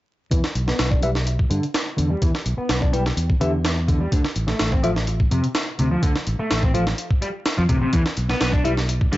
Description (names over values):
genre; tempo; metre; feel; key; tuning
breakbeat, breaks; 126 BPM; 4/4; straight; E phrygian; A4 = 440 Hz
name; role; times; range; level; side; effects
overdriven electric guitar; riff; 0.3-9.2 s; C3 to D4; -25 LUFS; equal; vintage 12-bit sampler grit, low-pass filter, tape echo
modern bright fingered electric bass; bass; 0.3-9.2 s; A1 to G2; -23 LUFS; equal; none
breakbeat sampler-style drum kit; drums; 0.3-9.2 s; hi-hat, kick drum, snare drum; -22 LUFS; equal; small room ambience
bell-like tine electric piano; stabs; 1.0-8.7 s; E4 to G5; -27 LUFS; left 2 dB; phaser, low-pass filter, tape echo
room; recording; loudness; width
little or no reverb; vinyl crackle, nothing above 7.7 kHz; -19 LUFS; side -16 dB against mid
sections
0.3-9.2 A section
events
filter sweep on overdriven electric guitar 0.3-9.2; filter sweep on tine electric piano 0.3-9.2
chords
0.3 Em; 4.1 Dm7 (rootless); 7.9 E5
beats
| 0.32 0.79 1.27 1.75 | 2.22 2.70 3.17 3.65 | 4.13 4.60 5.08 5.55 | 6.03 6.51 6.98 7.46 | 7.93 8.41 8.89